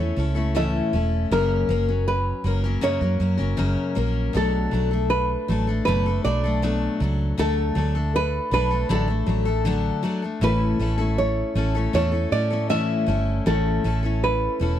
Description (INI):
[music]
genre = acoustic pop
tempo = 79 BPM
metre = 4/4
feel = straight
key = unclear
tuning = A4 = 440 Hz
[part]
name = nylon-string guitar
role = melody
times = 0.0-14.8 s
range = A4 to E5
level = -25 LUFS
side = equal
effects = none
[part]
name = picked steel-string acoustic guitar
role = accompaniment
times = 0.0-14.8 s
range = F#2 to A#4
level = -25 LUFS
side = left 3 dB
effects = none
[part]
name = vintage muted fingered electric bass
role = bass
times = 0.0-14.8 s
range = E1 to A2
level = -24 LUFS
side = right 1 dB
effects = none
[sound]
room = little or no reverb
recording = dry, close 1970s-style studio recording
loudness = -20 LUFS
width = side -11 dB against mid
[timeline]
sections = 0.0-14.8 A section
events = none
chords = 0.0 A; 1.3 F#; 4.3 Bm7; 7.4 D; 10.4 A